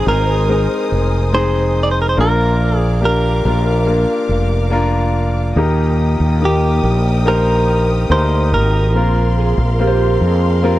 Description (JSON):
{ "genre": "pop ballad", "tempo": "71 BPM", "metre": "4/4", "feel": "straight", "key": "Eb major", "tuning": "A4 = 439 Hz", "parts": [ { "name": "direct-recorded clean electric guitar", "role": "melody", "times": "0.0-9.3 s", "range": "G4 to D5", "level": "-20 LUFS", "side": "right 2 dB", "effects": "tape echo" }, { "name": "clear concert grand piano", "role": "accompaniment", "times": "0.0-10.8 s", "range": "Bb2 to C5", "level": "-18 LUFS", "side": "left 3 dB", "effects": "none" }, { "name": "warm symphonic string section", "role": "sustained chords", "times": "0.0-10.8 s", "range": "Bb4 to Eb6", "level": "-27 LUFS", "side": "right 1 dB", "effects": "none" }, { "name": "fretless electric bass", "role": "bass", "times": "0.0-10.8 s", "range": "F1 to F2", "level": "-15 LUFS", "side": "equal", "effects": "none" }, { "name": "mellow French horn section", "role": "second line", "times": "9.4-10.8 s", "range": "G4 to Ab4", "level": "-20 LUFS", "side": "right 9 dB", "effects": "none" } ], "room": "little or no reverb", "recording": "dry, close 1970s-style studio recording", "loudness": "-13 LUFS", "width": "side -15 dB against mid", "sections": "0.0-5.6 A section; 5.6-10.8 B section", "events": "none", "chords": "0.0 Ab; 2.2 Bb; 5.6 Eb; 8.9 Bbsus2" }